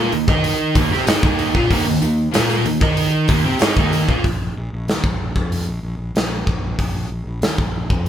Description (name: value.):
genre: classic rock.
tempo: 94 BPM.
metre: 4/4.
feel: straight.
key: unclear.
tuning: A4 = 438 Hz.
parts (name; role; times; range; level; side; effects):
distorted electric guitar; riff; 0.0-4.2 s; Eb3 to Eb5; -22 LUFS; left 8 dB; distortion.
overdriven electric guitar; riff; 0.0-4.2 s; Eb3 to Eb5; -20 LUFS; right 6 dB; none.
fuzz fingered electric bass; bass; 0.0-8.1 s; Bb1 to Eb3; -24 LUFS; equal; overdrive.
gated 80s drum kit; drums; 0.1-8.1 s; hi-hat, kick drum, snare drum; -19 LUFS; equal; none.
tambourine; percussion; 0.3-4.1 s; none; -37 LUFS; left 6 dB; none.
room: light reverb.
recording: band playing live in one room.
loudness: -16 LUFS.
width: side -10 dB against mid.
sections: 0.0-4.2 A section; 4.2-8.1 B section.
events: none.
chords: 0.0 Eb5; 4.2 Bb5.